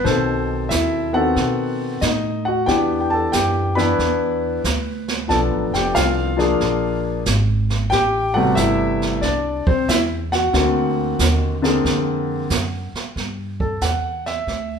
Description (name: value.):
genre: jazz piano trio.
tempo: 92 BPM.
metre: 4/4.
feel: swing 67% on 8ths.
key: G major.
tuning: A4 = 440 Hz.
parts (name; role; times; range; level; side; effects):
warm concert grand piano; melody; 0.0-14.8 s; B2 to B5; -19 LUFS; left 2 dB; none.
upright bass; bass; 0.0-14.8 s; F1 to B2; -24 LUFS; right 1 dB; none.
jazz brush drum kit; drums; 0.1-14.8 s; brushed snare drum, hi-hat, kick drum, snare drum; -23 LUFS; right 4 dB; none.
room: moderate large studio reverb, RT60 1.0 s.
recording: band playing live in one room.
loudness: -17 LUFS.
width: side -6 dB against mid.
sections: 0.0-13.1 A section; 13.1-14.8 B section.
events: none.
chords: 0.1 B7b9; 2.7 Em7; 5.3 Bm7b5; 6.6 Bb7; 7.9 Am9; 10.5 D7alt; 13.1 Gmaj7(no3).